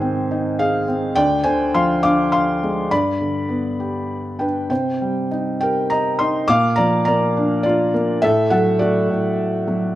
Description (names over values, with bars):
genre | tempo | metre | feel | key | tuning
classical, lyrical solo piano | 103 BPM | 3/4 | rubato | unclear | A4 = 440 Hz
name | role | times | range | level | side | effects
felt-muted upright piano | solo | 0.0-10.0 s | D2 to D6 | -16 LUFS | equal | none
room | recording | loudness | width
light reverb | close, detailed microphones | -16 LUFS | side -14 dB against mid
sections
0.0-10.0 A section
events
none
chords
0.0 Ab; 1.2 Ddim; 2.9 G; 4.7 Cm; 6.5 Bb; 8.2 D/A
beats
0.01 0.58 | 1.16 1.73 2.32 | 2.90 3.49 4.09 | 4.70 5.31 5.91 | 6.49 7.07 7.65 | 8.22 8.80 9.38